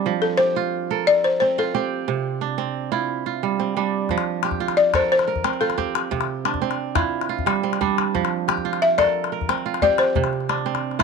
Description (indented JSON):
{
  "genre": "west african traditional, West African string and xylophone music",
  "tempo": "119 BPM (dotted quarters)",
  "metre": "12/8",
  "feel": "straight",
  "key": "F major",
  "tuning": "A4 = 441 Hz",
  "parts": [
    { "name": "kora", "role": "arpeggios", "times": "0.0-11.0 s", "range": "C3 to Bb4", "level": "-23 LUFS", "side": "right 10 dB", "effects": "none" },
    { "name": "balafon", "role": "melody", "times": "0.2-10.1 s", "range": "A4 to E5", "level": "-19 LUFS", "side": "left 4 dB", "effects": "none" },
    { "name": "calabash", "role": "percussion", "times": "4.1-11.0 s", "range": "none", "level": "-25 LUFS", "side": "left 10 dB", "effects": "none" }
  ],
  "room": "studio reverb",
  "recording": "1960s-style stereo with parts hard left and right",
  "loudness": "-19 LUFS",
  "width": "side -5 dB against mid",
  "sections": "0.0-11.0 A section",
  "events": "none",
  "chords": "0.1 F; 2.1 C; 4.1 F; 6.1 C; 8.1 F; 10.2 C5",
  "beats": "| 0.06 0.56 1.07 1.57 | 2.08 2.58 3.09 3.60 | 4.10 4.61 5.11 5.62 | 6.12 6.63 7.13 7.64 | 8.14 8.65 9.15 9.66 | 10.16 10.67"
}